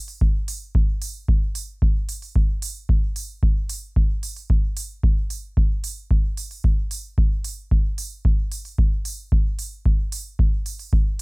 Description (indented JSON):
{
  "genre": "techno",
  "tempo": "112 BPM",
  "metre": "4/4",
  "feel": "straight",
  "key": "none",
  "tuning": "none",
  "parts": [
    { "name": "electronic hi-hat", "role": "drums", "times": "0.1-11.2 s", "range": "none", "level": "-32 LUFS", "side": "right 4 dB", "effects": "none" },
    { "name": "electronic kick drum", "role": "drums", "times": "0.2-11.0 s", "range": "none", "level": "-19 LUFS", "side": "equal", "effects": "none" }
  ],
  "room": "little or no reverb",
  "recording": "none",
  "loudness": "-20 LUFS",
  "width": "side -30 dB against mid",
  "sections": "0.0-11.2 A section",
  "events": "none",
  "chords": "none"
}